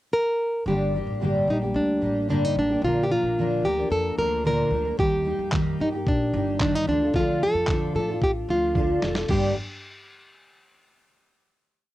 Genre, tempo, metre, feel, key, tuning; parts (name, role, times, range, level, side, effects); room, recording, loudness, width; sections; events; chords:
acoustic pop; 111 BPM; 4/4; straight; G minor; A4 = 438 Hz
nylon-string guitar; melody; 0.1-9.6 s; D4 to Bb4; -24 LUFS; equal; cassette tape
fingerpicked steel-string acoustic guitar; accompaniment; 0.7-9.5 s; G2 to Bb4; -26 LUFS; equal; double-tracked left and right, cassette tape
upright bass; bass; 0.7-9.5 s; F1 to A2; -32 LUFS; equal
dusty soul sampler-style drum kit; drums; 5.0-9.4 s; crash cymbal, handclaps, kick drum, snare drum; -27 LUFS; equal; cassette tape
little or no reverb; home recording on cassette; -21 LUFS; side -15 dB against mid
0.0-0.7 pickup bar; 0.7-9.3 verse; 9.3-11.4 final chord
drum fill 8.2-9.3
0.0 N.C.; 0.7 Gm; 2.8 Bb; 5.0 Eb; 6.9 Dm; 9.3 G5